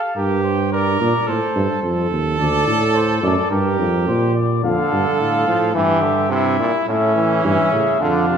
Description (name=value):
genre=classical, imitative canzona for brass ensemble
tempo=107 BPM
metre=4/4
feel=straight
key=G minor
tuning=A4 = 440 Hz
part: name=mellow trumpet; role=melody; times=0.0-8.4 s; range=Bb4 to F5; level=-21 LUFS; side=left 5 dB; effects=none
part: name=bright trumpet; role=second line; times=0.2-8.4 s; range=C#4 to Bb4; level=-22 LUFS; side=right 6 dB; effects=none
part: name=dark bass trombone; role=bass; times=0.2-8.4 s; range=D2 to Bb2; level=-20 LUFS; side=right 1 dB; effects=none
part: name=brilliant trombone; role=accompaniment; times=4.6-8.4 s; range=A2 to F3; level=-20 LUFS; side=right 3 dB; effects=none
room=wet recital hall reverb, RT60 1.3 s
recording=recorded in a church or concert hall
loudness=-15 LUFS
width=side -7 dB against mid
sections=0.0-8.4 A section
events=none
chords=0.2 Gm; 1.3 Adim; 2.4 D5; 3.5 Gm; 4.6 Dm/F; 5.8 Em/G; 6.9 A